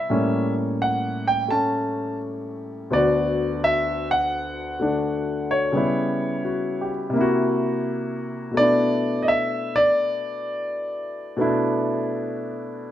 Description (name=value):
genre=solo jazz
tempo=85 BPM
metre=4/4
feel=swing 67% on 8ths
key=B minor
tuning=A4 = 439 Hz
part: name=warm grand piano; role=solo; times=0.0-12.9 s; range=D2 to A5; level=-21 LUFS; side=equal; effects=none
room=light reverb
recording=close, detailed microphones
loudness=-21 LUFS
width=side -11 dB against mid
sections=0.0-12.9 A section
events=none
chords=0.1 A7b9; 2.9 D6; 5.7 C#m7b5; 7.2 C7#11; 8.6 Bm7